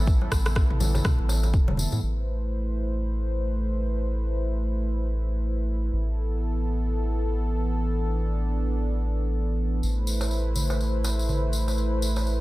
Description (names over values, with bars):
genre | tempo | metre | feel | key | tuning
afro house | 123 BPM | 4/4 | swing 59% on 16ths | A minor | A4 = 439 Hz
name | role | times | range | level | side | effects
warm analog pad | sustained chords | 0.0-12.4 s | E3 to C5 | -31 LUFS | right 1 dB | chorus, sidechain pumping
round analog bass | bass | 0.0-12.4 s | E1 to A2 | -25 LUFS | equal | sidechain pumping
electronic kick drum | drums | 0.1-1.7 s | none | -22 LUFS | equal | none
tambourine | percussion | 0.1-2.0, 9.8-12.4 s | none | -36 LUFS | left 2 dB | none
congas | percussion | 0.2-2.0 s | none | -34 LUFS | left 2 dB | none
darbuka | percussion | 0.2-1.8, 10.2-12.2 s | none | -35 LUFS | right 2 dB | none
deep house drum kit | drums | 0.3-1.8 s | rim click, toms | -31 LUFS | equal | none
room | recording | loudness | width
studio reverb | none | -24 LUFS | side -18 dB against mid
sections
0.0-2.0 A section; 2.0-12.4 B section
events
filter sweep on analog synth pad 2.0-12.4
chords
0.0 Esus4/A; 2.0 Am; 5.9 E7sus4/A; 9.8 Am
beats
| 0.07 0.56 1.05 1.54 | 2.02 2.51 3.00 3.49 | 3.98 4.46 4.95 5.44 | 5.93 6.41 6.90 7.39 | 7.88 8.37 8.85 9.34 | 9.83 10.32 10.80 11.29 | 11.78 12.27